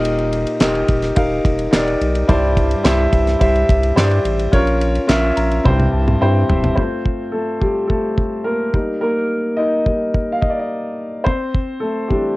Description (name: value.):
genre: piano-driven pop.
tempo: 107 BPM.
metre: 4/4.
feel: straight.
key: F major.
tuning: A4 = 440 Hz.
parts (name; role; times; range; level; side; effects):
clear grand piano; accompaniment; 0.0-12.4 s; G2 to Bb5; -17 LUFS; left 1 dB; cassette tape.
saturated sub bass; bass; 0.0-6.7 s; Eb1 to G2; -19 LUFS; equal; none.
damped 70s drum kit; drums; 0.1-12.2 s; handclaps, kick drum, ride cymbal, snare drum, toms; -18 LUFS; equal; none.
room: light reverb.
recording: home recording on cassette.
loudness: -15 LUFS.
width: side -20 dB against mid.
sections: 0.0-6.8 A section; 6.8-12.4 B section.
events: grand piano fill 5.1-6.8; drum fill 5.7-6.8; grand piano solo 6.8-12.4.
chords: 0.0 Eb; 2.3 Cadd9; 4.5 Bbm; 5.7 C; 6.8 F; 8.7 Eb; 11.3 Cadd9.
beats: | 0.05 0.61 1.17 1.73 | 2.29 2.85 3.41 3.97 | 4.53 5.09 5.65 6.21 | 6.77 7.33 7.90 8.46 | 9.02 9.58 10.14 10.71 | 11.27 11.83.